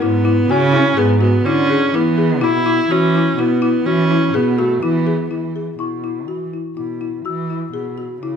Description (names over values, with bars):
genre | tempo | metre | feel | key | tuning
contemporary instrumental, chamber music in an uneven meter | 124 BPM | 7/4 | straight | unclear | A4 = 440 Hz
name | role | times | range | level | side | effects
rich viola | second line | 0.0-5.3 s | A3 to E4 | -18 LUFS | right 3 dB | none
folk marimba with medium mallets | arpeggios | 0.0-8.4 s | E4 to G#4 | -19 LUFS | left 5 dB | none
warm cello | bass | 0.0-8.4 s | G#2 to E3 | -20 LUFS | right 3 dB | none
celesta | texture | 0.0-8.1 s | F#5 to E6 | -27 LUFS | left 4 dB | none
room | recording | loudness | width
light reverb | minimal, uncompressed stereo recording | -14 LUFS | side -7 dB against mid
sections
0.0-5.3 A section; 5.3-8.4 B section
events
none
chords
0.0 C#m7; 1.9 E; 5.3 E5